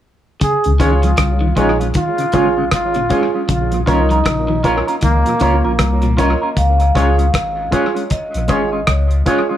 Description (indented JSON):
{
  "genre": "roots reggae",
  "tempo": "78 BPM",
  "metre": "4/4",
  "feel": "swing 60% on 16ths",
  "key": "Db major",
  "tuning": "A4 = 443 Hz",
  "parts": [
    { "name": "breathy trombone", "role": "second line", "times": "0.4-6.1 s", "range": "Bb3 to Ab4", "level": "-19 LUFS", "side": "right 2 dB", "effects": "tape echo" },
    { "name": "electric guitar at the edge of break-up", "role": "arpeggios", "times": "0.4-6.3 s", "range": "Ab2 to F3", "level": "-25 LUFS", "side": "left 4 dB", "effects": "none" },
    { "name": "damped 70s drum kit", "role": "drums", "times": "0.4-9.5 s", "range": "hi-hat, kick drum, rim click", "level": "-19 LUFS", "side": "equal", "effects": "analog delay" },
    { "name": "mellow tonewheel organ", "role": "accompaniment", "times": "0.7-6.3 s", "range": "Bb2 to F4", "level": "-25 LUFS", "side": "left 1 dB", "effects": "slow rotary speaker, analog delay" },
    { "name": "soft dub sub bass", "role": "bass", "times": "0.7-9.2 s", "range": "Ab1 to Db2", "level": "-17 LUFS", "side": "equal", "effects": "none" },
    { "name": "electric guitar with an envelope filter", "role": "accompaniment", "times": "0.8-9.6 s", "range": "Ab3 to Bb4", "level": "-21 LUFS", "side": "right 3 dB", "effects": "tape echo" },
    { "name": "warm upright piano", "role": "stabs", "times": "0.8-9.4 s", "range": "F4 to Db5", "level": "-22 LUFS", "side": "equal", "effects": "none" },
    { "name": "vibraphone with medium hard mallets", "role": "melody", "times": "6.2-9.6 s", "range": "Db5 to F5", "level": "-21 LUFS", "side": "equal", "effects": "tape echo" }
  ],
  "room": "light reverb",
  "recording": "echo-heavy mix",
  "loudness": "-13 LUFS",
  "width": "side -11 dB against mid",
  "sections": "0.4-6.6 A section; 6.6-9.6 B section",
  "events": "none",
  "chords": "0.4 Db; 3.5 Bbm; 6.6 Db",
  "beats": "| 0.41 1.18 1.95 2.72 | 3.49 4.26 5.03 5.80 | 6.57 7.34 8.11 8.88"
}